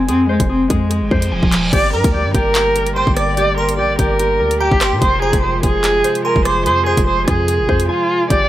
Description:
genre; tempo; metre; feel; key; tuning
hip hop, drill; 146 BPM; 4/4; half-time; unclear; A4 = 440 Hz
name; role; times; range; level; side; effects
dark cello; melody; 0.0-8.5 s; F3 to D5; -16 LUFS; right 1 dB; low-pass filter, tape echo
concert harp; accompaniment; 0.0-8.5 s; G4 to Ab5; -24 LUFS; left 4 dB; low-pass filter, tape echo
hard-hitting 808-style bass; bass; 0.0-8.5 s; Eb1 to Bb2; -20 LUFS; equal; none
drill drum kit; drums; 0.1-8.4 s; crash cymbal, handclaps, hi-hat, kick drum, rim click; -18 LUFS; equal; none
reverse cymbal and impact; sound effects; 1.1-3.4 s; none; -28 LUFS; right 2 dB; none
dark analog pad; sustained chords; 1.7-8.5 s; C3 to G4; -25 LUFS; right 2 dB; chorus
delicate synth tine bell; second line; 1.9-7.1 s; Bb5 to D6; -28 LUFS; right 5 dB; chorus, tape echo
room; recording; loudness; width
light reverb; echo-heavy mix; -13 LUFS; side -14 dB against mid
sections
0.0-1.7 A section; 1.7-8.5 B section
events
reverse cymbal 1.1-1.7; impact 1.7-3.4; drums muted 7.9-8.3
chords
0.0 Fm; 1.7 Gm; 5.0 Fm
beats
| 0.08 0.49 0.91 1.32 | 1.73 2.14 2.55 2.96 | 3.37 3.78 4.19 4.61 | 5.02 5.43 5.84 6.25 | 6.66 7.07 7.48 7.89 | 8.30

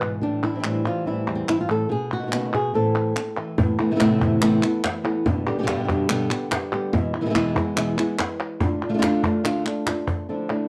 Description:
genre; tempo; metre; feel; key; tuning
flamenco; 143 BPM; 4/4; straight; A minor from 3.6 s; A4 = 440 Hz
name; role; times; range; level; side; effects
flamenco guitar; melody; 0.0-10.7 s; E2 to A4; -25 LUFS; equal; plate reverb
palmas hand claps; percussion; 0.0-10.7 s; none; -31 LUFS; equal; none
flamenco guitar; stabs; 0.2-10.7 s; E2 to G4; -30 LUFS; equal; none
cajon; percussion; 3.6-10.2 s; none; -29 LUFS; equal; none
room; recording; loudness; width
moderate studio reverb, RT60 0.6 s; dark, warm production; -23 LUFS; mono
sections
0.0-3.6 A section; 3.6-10.3 B section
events
drum fill 9.9-10.3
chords
0.2 Am7; 1.9 B7; 2.7 Am; 3.6 Amadd9; 5.3 G; 6.9 E; 8.6 Dm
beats
| 0.22 0.64 1.06 1.48 | 1.90 2.32 2.74 3.16 | 3.58 4.00 4.42 4.84 | 5.26 5.68 6.10 6.51 | 6.93 7.35 7.77 8.19 | 8.61 9.03 9.45 9.87 | 10.29

